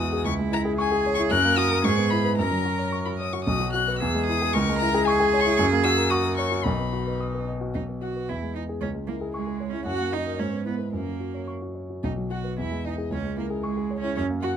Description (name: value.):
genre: quick classical-period movement for piano trio.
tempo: 113 BPM.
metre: 2/4.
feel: rubato.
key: B major.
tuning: A4 = 440 Hz.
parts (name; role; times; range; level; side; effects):
dark violin; melody; 0.0-14.6 s; G#4 to F#6; -28 LUFS; left 8 dB; none.
rich cello; second line; 0.0-14.5 s; G#3 to A#4; -29 LUFS; right 6 dB; none.
dark grand piano; accompaniment; 0.0-14.6 s; B1 to D#6; -25 LUFS; equal; none.
room: little or no reverb.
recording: close, detailed microphones.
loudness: -22 LUFS.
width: side -8 dB against mid.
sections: 0.0-7.8 A section; 7.8-14.6 A section.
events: none.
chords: 0.3 C#m; 1.3 F#; 1.8 E/G#; 2.4 F#; 3.5 B; 4.0 E; 4.5 C#m; 5.6 F#; 6.7 B; 7.8 B5; 8.3 E; 8.8 C#m; 9.9 F#; 10.4 E/G#; 10.9 F#; 12.0 B5; 12.6 E; 13.1 C#m.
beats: | 0.25 0.78 | 1.31 1.84 | 2.37 2.92 | 3.47 4.01 | 4.54 5.07 | 5.59 6.12 | 6.66 7.21 | 7.76 8.30 | 8.82 9.35 | 9.87 10.40 | 10.94 11.49 | 12.04 12.58 | 13.11 13.64 | 14.17.